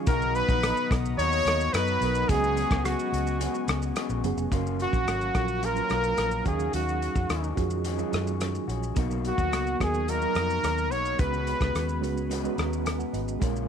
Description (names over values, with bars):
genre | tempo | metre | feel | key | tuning
indie pop, bedroom pop | 108 BPM | 4/4 | straight | unclear | A4 = 439 Hz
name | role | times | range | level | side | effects
electric guitar through a small old amp | accompaniment | 0.0-13.7 s | A#2 to F#4 | -33 LUFS | left 15 dB | wide subtle chorus, vibrato effect
reed electric piano | accompaniment | 0.0-13.7 s | F#3 to A#5 | -33 LUFS | right 16 dB | fast tremolo, cassette tape
hollow soft pad | sustained chords | 0.0-4.5 s | D#5 to D#6 | -40 LUFS | right 2 dB | chorus
clear trumpet | melody | 0.1-12.0 s | F#4 to C#5 | -28 LUFS | equal | analog chorus, tape echo
vintage muted fingered electric bass | bass | 0.1-13.7 s | E#1 to F#2 | -30 LUFS | equal | none
loose indie drum kit | drums | 0.1-13.7 s | hi-hat, kick drum, rim click, shaker | -30 LUFS | equal | none
room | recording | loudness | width
small room ambience | 1960s-style stereo with parts hard left and right | -24 LUFS | side -7 dB against mid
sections
0.0-4.5 A section; 4.5-13.7 B section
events
reed electric piano fill 12.3-13.4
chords
0.1 Bmaj7; 2.3 C#7sus4; 4.5 F#maj7; 6.5 D#m11; 9.0 Bmaj7; 11.2 C#7sus4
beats
| 0.07 0.63 1.19 1.74 | 2.30 2.85 3.41 3.96 | 4.52 5.07 5.63 6.19 | 6.74 7.30 7.85 8.41 | 8.96 9.52 10.08 10.63 | 11.19 11.74 12.30 12.86 | 13.41